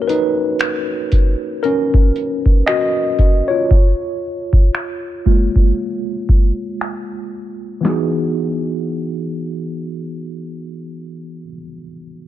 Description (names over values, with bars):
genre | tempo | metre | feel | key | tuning
contemporary R&B | 58 BPM | 4/4 | swing 58% on 16ths | E lydian | A4 = 440 Hz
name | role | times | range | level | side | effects
tine electric piano | accompaniment | 0.0-12.3 s | E3 to D#5 | -20 LUFS | equal | medium stereo tremolo
booming analog drum machine | drums | 0.1-8.1 s | finger snaps, hi-hat, kick drum, snare drum | -14 LUFS | equal | overdrive
room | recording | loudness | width
little or no reverb | low-pass filter | -15 LUFS | side -13 dB against mid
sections
0.0-7.8 A section; 7.8-12.0 B section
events
tine electric piano solo 0.0-7.8; filter sweep 0.0-7.8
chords
0.0 Bmaj9; 3.7 A#m7; 7.8 Emaj9